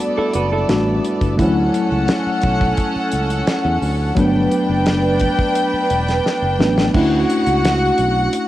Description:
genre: lush 1970s-style soul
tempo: 86 BPM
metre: 4/4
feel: straight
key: D major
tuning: A4 = 438 Hz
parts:
  - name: warm studio string section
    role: second line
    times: 0.0-8.5 s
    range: B3 to G5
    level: -19 LUFS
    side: equal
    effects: tape echo
  - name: mellow tine electric piano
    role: accompaniment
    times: 0.0-8.5 s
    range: E3 to F#4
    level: -20 LUFS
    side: left 1 dB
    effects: medium stereo tremolo
  - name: semi-hollow electric guitar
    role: riff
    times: 0.2-1.4 s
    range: E4 to B4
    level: -23 LUFS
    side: right 3 dB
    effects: wide subtle chorus
  - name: fingered electric bass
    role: bass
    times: 0.2-8.3 s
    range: E1 to E2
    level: -21 LUFS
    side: equal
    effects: none
  - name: damped 70s drum kit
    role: drums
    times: 0.3-8.5 s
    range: crash cymbal, hi-hat, kick drum, snare drum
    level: -21 LUFS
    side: equal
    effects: cassette tape
room: light reverb, studio ambience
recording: home recording on cassette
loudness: -15 LUFS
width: side -14 dB against mid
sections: 0.0-6.9 A section; 6.9-8.5 B section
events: drum fill 6.3-6.9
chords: 0.0 Em11; 1.4 Dmaj9; 4.2 Gmaj9; 6.9 Bm11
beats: 0.00 0.69 | 1.39 2.08 2.78 3.48 | 4.17 4.86 5.56 6.25 | 6.95 7.64 8.33

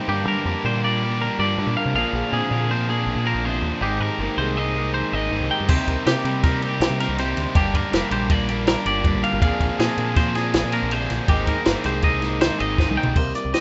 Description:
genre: math rock and midwest emo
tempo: 161 BPM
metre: 5/4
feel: straight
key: unclear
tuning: A4 = 440 Hz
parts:
  - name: electric guitar through a small old amp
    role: accompaniment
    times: 0.0-13.6 s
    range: G2 to C5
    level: -31 LUFS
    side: equal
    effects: none
  - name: twangy electric guitar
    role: arpeggios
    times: 0.0-13.6 s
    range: G4 to G5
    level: -28 LUFS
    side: equal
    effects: tape echo
  - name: cranked stack guitar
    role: riff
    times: 0.0-13.2 s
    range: G2 to Ab4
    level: -29 LUFS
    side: equal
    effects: overdrive
  - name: deep dub picked electric bass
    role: bass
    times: 0.1-13.5 s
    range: F1 to G3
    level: -28 LUFS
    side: equal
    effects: none
  - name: compact cocktail drum kit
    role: drums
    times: 5.7-13.6 s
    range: crash cymbal, hi-hat, kick drum, ride cymbal, snare drum, toms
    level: -24 LUFS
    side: equal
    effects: none
room: little or no reverb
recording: rough home demo mix, nothing above 7.9 kHz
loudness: -21 LUFS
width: mono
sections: 0.0-13.2 A section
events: drum fill 12.8-13.2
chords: 0.1 Gm7; 2.0 Bb7sus2; 3.8 Abmaj9; 5.7 Cm7; 7.6 Gm7; 9.4 Bbsus2; 11.3 Abmaj9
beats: | 0.09 0.46 0.83 1.21 1.58 | 1.96 2.33 2.71 3.08 3.45 | 3.83 4.20 4.57 4.95 5.32 | 5.69 6.07 6.44 6.81 7.18 | 7.56 7.93 8.30 8.68 9.05 | 9.42 9.80 10.17 10.54 10.92 | 11.29 11.66 12.04 12.41 12.79 | 13.16 13.54

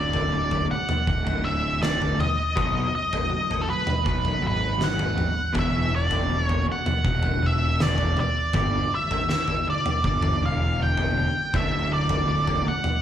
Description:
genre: quiet-loud alternative rock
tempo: 80 BPM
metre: 4/4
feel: straight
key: D major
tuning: A4 = 440 Hz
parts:
  - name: octave-fuzz lead guitar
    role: melody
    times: 0.0-13.0 s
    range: A4 to G5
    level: -26 LUFS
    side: right 1 dB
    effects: distortion, slapback echo, digital delay
  - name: twelve-string electric guitar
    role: arpeggios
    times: 0.0-13.0 s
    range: D2 to B3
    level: -33 LUFS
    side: equal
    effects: lush chorus, slapback echo
  - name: fuzz picked electric bass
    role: bass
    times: 0.0-12.7 s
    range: D1 to B1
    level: -26 LUFS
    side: equal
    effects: overdrive
  - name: oversized low-tuned drum kit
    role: drums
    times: 0.1-13.0 s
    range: kick drum, snare drum, toms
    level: -26 LUFS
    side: equal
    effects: none
room: light reverb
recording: live gig heard through the venue's PA, club reverb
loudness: -21 LUFS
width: side -10 dB against mid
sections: 0.0-13.0 A section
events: none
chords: 0.0 D; 2.6 B; 5.6 E5; 8.5 G5; 11.5 D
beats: 0.33 1.08 1.82 | 2.57 3.31 4.06 4.81 | 5.56 6.30 7.05 7.80 | 8.55 9.30 10.04 10.79 | 11.54 12.29

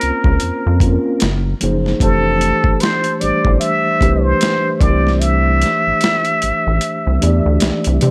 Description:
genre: R&B, neo-soul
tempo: 75 BPM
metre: 4/4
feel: swing 59% on 16ths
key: F major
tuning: A4 = 442 Hz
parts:
  - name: trumpet with plunger mute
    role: melody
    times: 0.0-7.6 s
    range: A4 to E5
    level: -20 LUFS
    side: equal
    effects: analog delay
  - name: mellow tine electric piano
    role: accompaniment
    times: 0.0-8.1 s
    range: E3 to D5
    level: -22 LUFS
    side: equal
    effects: none
  - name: rubbery square bass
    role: bass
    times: 0.0-8.1 s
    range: F1 to C3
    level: -18 LUFS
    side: equal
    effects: none
  - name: boom bap sampler-style drum kit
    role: drums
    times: 0.0-8.1 s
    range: hi-hat, kick drum, snare drum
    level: -20 LUFS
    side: equal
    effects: overdrive
room: light reverb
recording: none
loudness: -15 LUFS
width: mono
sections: 0.0-8.1 A section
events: kick muted 5.2-8.1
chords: 0.0 Bbmadd9; 1.2 Gbmaj9; 2.0 Fmaj9; 4.8 C69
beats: 0.41 1.21 | 2.00 2.81 3.60 4.41 | 5.21 6.00 6.80 7.61

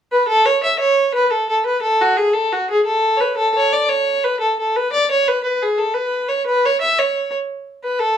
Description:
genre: celtic folk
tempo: 116 BPM (dotted quarters)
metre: 9/8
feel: straight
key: A major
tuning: A4 = 440 Hz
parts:
  - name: rich fiddle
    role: melody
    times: 0.1-8.2 s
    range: F#4 to E5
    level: -15 LUFS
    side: equal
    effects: none
room: moderate small room reverb, RT60 0.6 s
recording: dark, warm production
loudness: -15 LUFS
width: side -9 dB against mid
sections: 0.3-8.2 A section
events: none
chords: none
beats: | 0.28 0.79 1.31 | 1.82 2.34 2.86 | 3.37 3.89 4.40 | 4.92 5.43 5.95 | 6.46 6.98 7.49 | 8.01

